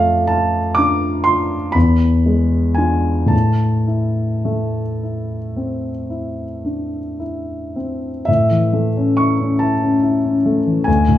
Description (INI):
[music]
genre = classical, romantic nocturne for solo piano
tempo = 34-48 BPM (dotted quarters)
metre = 9/8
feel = rubato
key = A minor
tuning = A4 = 440 Hz
[part]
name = dark concert grand piano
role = solo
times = 0.0-11.2 s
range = D2 to D6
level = -15 LUFS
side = left 1 dB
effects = none
[sound]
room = wet large studio reverb, RT60 0.8 s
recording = heard from further back in the room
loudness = -15 LUFS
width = side -12 dB against mid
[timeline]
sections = 0.0-8.3 A section; 8.3-11.2 B section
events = none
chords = 0.0 Dm/F; 1.8 E7b9; 3.3 Am; 8.3 A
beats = 0.29 1.75 | 3.32 5.04 6.65 | 8.28 9.62 10.88